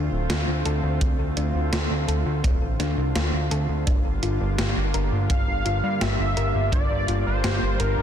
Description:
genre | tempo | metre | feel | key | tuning
synthwave | 84 BPM | 4/4 | straight | D minor | A4 = 440 Hz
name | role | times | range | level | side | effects
lush unison pad | sustained chords | 0.0-8.0 s | D3 to F4 | -30 LUFS | equal | chorus, sidechain pumping
thumb-piano-like synth pluck | arpeggios | 0.0-8.0 s | C4 to Bb4 | -33 LUFS | left 5 dB | chorus, digital delay
fat analog bass | bass | 0.0-8.0 s | D1 to G2 | -24 LUFS | equal | sidechain pumping
gated 80s digital drum machine | drums | 0.3-7.9 s | hi-hat, snare drum | -29 LUFS | equal | gated reverb, gated reverb snare
kick drum | drums | 1.0-6.9 s | none | -23 LUFS | equal | none
wide unison lead | melody | 5.3-8.0 s | Bb4 to F5 | -27 LUFS | equal | analog chorus, digital delay
room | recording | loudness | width
light reverb, digital ambience | dense, heavily limited modern master | -21 LUFS | side -9 dB against mid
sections
0.0-8.0 A section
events
none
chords
0.0 Dm7; 3.9 Gm7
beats
0.30 | 1.01 1.73 2.44 3.16 | 3.87 4.58 5.30 6.01 | 6.73 7.44

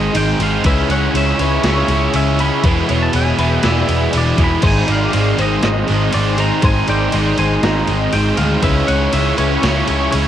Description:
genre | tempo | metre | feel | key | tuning
rock, shoegaze and dream pop | 120 BPM | 4/4 | straight | unclear | A4 = 440 Hz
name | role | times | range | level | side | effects
twangy electric guitar | melody | 0.0-10.3 s | C#5 to B5 | -23 LUFS | equal | cassette tape, tape echo
lush unison pad | sustained chords | 0.0-10.3 s | D#4 to C#6 | -24 LUFS | left 1 dB | chorus, cassette tape
twelve-string electric guitar | arpeggios | 0.0-10.1 s | B4 to D#5 | -26 LUFS | left 4 dB | ensemble chorus, cassette tape, tape echo
biting overdriven guitar | riff | 0.0-10.3 s | G#2 to E4 | -20 LUFS | right 7 dB | reverse reverb, cassette tape
biting overdriven guitar | riff | 0.0-10.3 s | E2 to C#4 | -21 LUFS | left 1 dB | cassette tape
thick fuzz guitar | riff | 0.0-10.3 s | E2 to C#4 | -24 LUFS | left 8 dB | distortion, ensemble chorus, cassette tape
vintage muted picked electric bass | bass | 0.0-10.3 s | E1 to D2 | -18 LUFS | equal | none
gated 80s digital drum machine | drums | 0.1-10.2 s | crash cymbal, kick drum, ride cymbal, snare drum | -22 LUFS | equal | gated reverb, gated reverb snare
room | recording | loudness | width
digital ambience | home recording on cassette | -13 LUFS | side -10 dB against mid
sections
0.0-10.3 A section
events
none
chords
0.0 G#; 0.6 C#m; 2.6 E; 4.6 G#; 8.6 C#m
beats
0.15 | 0.65 1.15 1.65 2.15 | 2.65 3.14 3.64 4.14 | 4.64 5.14 5.64 6.14 | 6.64 7.14 7.64 8.14 | 8.64 9.14 9.64 10.14

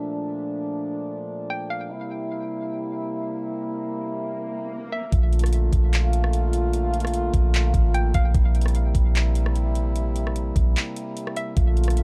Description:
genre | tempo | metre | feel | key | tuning
hip hop, atmospheric cloud-rap | 149 BPM | 4/4 | half-time | Bb lydian | A4 = 440 Hz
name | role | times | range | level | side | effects
mellow French horn section | sustained chords | 0.0-12.0 s | Bb2 to F4 | -31 LUFS | equal | sidechain pumping
hollow square pluck | melody | 1.5-1.9, 4.9-5.1, 7.9-8.3, 11.4-11.6 s | E5 to G5 | -35 LUFS | equal | chorus, low-pass filter, delay
swell | sound effects | 3.6-5.1 s | none | -44 LUFS | equal | none
soft 808-style bass | bass | 5.1-12.0 s | A1 to Bb1 | -23 LUFS | equal | none
smooth R&B drum kit | drums | 5.1-12.0 s | handclaps, hi-hat, kick drum, rim click | -26 LUFS | equal | none
room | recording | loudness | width
digital ambience | dark, warm production | -24 LUFS | mono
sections
0.0-5.1 A section; 5.1-12.0 B section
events
swell 3.6-5.1; break 10.8-11.6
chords
0.0 Bbmaj7; 1.9 C7; 5.1 Bbmaj7; 8.3 C7/Bb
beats
| 0.29 0.69 1.10 1.50 | 1.90 2.31 2.71 3.11 | 3.51 3.92 4.32 4.72 | 5.12 5.53 5.93 6.33 | 6.74 7.14 7.54 7.94 | 8.35 8.75 9.15 9.55 | 9.96 10.36 10.76 11.16 | 11.57 11.97

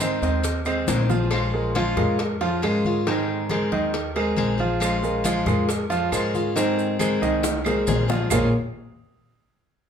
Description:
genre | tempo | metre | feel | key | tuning
latin, Cuban son and guajira | 137 BPM | 4/4 | straight | Bb minor | A4 = 440 Hz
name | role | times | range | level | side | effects
picked acoustic archtop guitar | accompaniment | 0.0-8.5 s | Bb2 to Ab4 | -26 LUFS | left 3 dB | none
warm grand piano | arpeggios | 0.0-8.5 s | Eb3 to F5 | -24 LUFS | right 2 dB | none
upright bass | bass | 0.0-8.5 s | Bb1 to Ab2 | -28 LUFS | equal | none
claves | percussion | 0.0-8.4 s | none | -35 LUFS | right 5 dB | none
congas | percussion | 0.0-8.4 s | none | -30 LUFS | left 1 dB | none
cowbell and bongos | percussion | 0.0-8.4 s | none | -31 LUFS | left 4 dB | none
maracas | percussion | 0.0-1.3, 4.8-8.4 s | none | -34 LUFS | right 8 dB | none
room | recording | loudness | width
moderate large studio reverb, RT60 0.9 s | band playing live in one room | -20 LUFS | side -8 dB against mid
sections
0.0-1.3 A section; 1.3-8.3 B section; 8.3-9.9 C section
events
drum fill 0.9-1.3, 7.4-8.3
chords
0.0 Abadd9; 1.3 Bbm7; 3.1 Abadd9; 4.8 Bbm7; 6.6 Abadd9; 8.3 Bbm7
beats
0.01 0.44 0.88 | 1.32 1.75 2.19 2.63 | 3.07 3.50 3.94 4.38 | 4.82 5.25 5.69 6.13 | 6.56 7.00 7.44 7.88 | 8.31

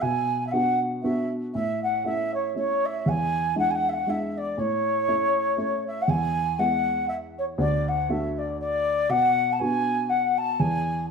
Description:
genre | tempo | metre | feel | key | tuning
celtic folk | 119 BPM | 3/4 | swing 56% on 8ths | unclear | A4 = 440 Hz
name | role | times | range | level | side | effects
mellow baroque flute | melody | 0.0-11.1 s | C#5 to A5 | -24 LUFS | left 1 dB | none
dark upright piano | accompaniment | 0.0-11.1 s | D2 to F#4 | -28 LUFS | equal | none
room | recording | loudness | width
wet stone room reverb, RT60 1.1 s | band playing live in one room | -22 LUFS | side -5 dB against mid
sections
0.0-6.1 A section; 6.1-11.1 A section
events
none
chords
0.0 Bm; 1.5 A; 3.1 E7; 4.6 A; 6.1 E; 7.6 D; 9.1 Bm; 10.6 E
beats
| 0.02 0.53 1.03 | 1.54 2.05 2.55 | 3.06 3.56 4.07 | 4.57 5.07 5.58 | 6.08 6.58 7.08 | 7.58 8.08 8.59 | 9.09 9.59 10.09 | 10.59 11.09

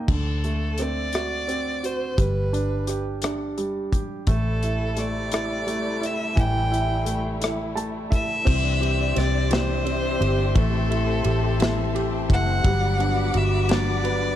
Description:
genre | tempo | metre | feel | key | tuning
six-eight pop ballad | 57 BPM (dotted quarters) | 6/8 | straight | G major | A4 = 440 Hz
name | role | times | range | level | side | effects
clear baby grand piano | accompaniment | 0.0-14.4 s | D3 to A5 | -28 LUFS | right 3 dB | none
vintage muted fingered electric bass | bass | 0.0-14.4 s | F#1 to D2 | -25 LUFS | equal | none
rich violin | melody | 0.1-14.4 s | A4 to G5 | -28 LUFS | equal | slapback echo
modern studio drum kit | drums | 0.1-14.2 s | crash cymbal, hi-hat, kick drum, ride cymbal, rim click, snare drum | -26 LUFS | equal | none
warm studio string section | sustained chords | 4.3-14.4 s | C3 to D6 | -32 LUFS | left 2 dB | none
direct-recorded clean electric guitar | arpeggios | 8.5-14.4 s | E3 to D4 | -29 LUFS | left 14 dB | spring reverb
room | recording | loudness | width
small room ambience | dark, warm production | -21 LUFS | side -11 dB against mid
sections
0.1-8.5 A section; 8.5-14.4 B section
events
grand piano fill 7.4-8.5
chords
0.1 D7; 2.2 G; 4.3 Am7; 8.5 Cadd9; 10.6 Am7; 12.6 Gmaj7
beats
| 0.08 1.13 | 2.18 3.23 | 4.28 5.32 | 6.37 7.42 | 8.46 9.51 | 10.56 11.60 | 12.65 13.69

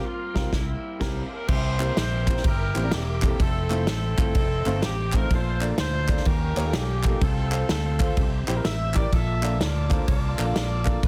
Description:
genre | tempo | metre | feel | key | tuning
uptempo gospel | 126 BPM | 4/4 | swing 64% on 8ths | unclear | A4 = 440 Hz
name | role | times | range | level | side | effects
warm saxophone section | melody | 0.0-11.1 s | G3 to E5 | -33 LUFS | equal | none
bright tonewheel organ | sustained chords | 0.0-11.1 s | A3 to D6 | -42 LUFS | equal | none
warm studio string section | sustained chords | 0.0-1.5 s | G3 to F4 | -44 LUFS | equal | none
warm grand piano | accompaniment | 0.3-11.1 s | Bb2 to F5 | -34 LUFS | equal | none
fingered electric bass | bass | 0.4-11.1 s | E1 to Eb2 | -29 LUFS | equal | none
natural country drum kit | drums | 0.4-11.1 s | crash cymbal, kick drum, ride cymbal, snare drum | -28 LUFS | equal | none
group handclap | percussion | 1.8-10.9 s | none | -37 LUFS | equal | none
room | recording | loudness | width
small room ambience | dense, heavily limited modern master | -24 LUFS | mono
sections
0.0-1.5 A section; 1.5-11.1 B section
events
band accent 0.0-1.5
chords
0.0 C7sus4; 0.5 C7; 3.4 Fmaj7; 4.4 F7; 5.3 Bbmaj7; 6.3 Eb9; 7.2 F/C; 8.2 C; 9.1 Bbmaj7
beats
0.05 0.53 1.01 | 1.49 1.97 2.44 2.92 | 3.40 3.88 4.35 4.83 | 5.31 5.79 6.26 6.74 | 7.22 7.69 8.17 8.65 | 9.12 9.60 10.07 10.55 | 11.03

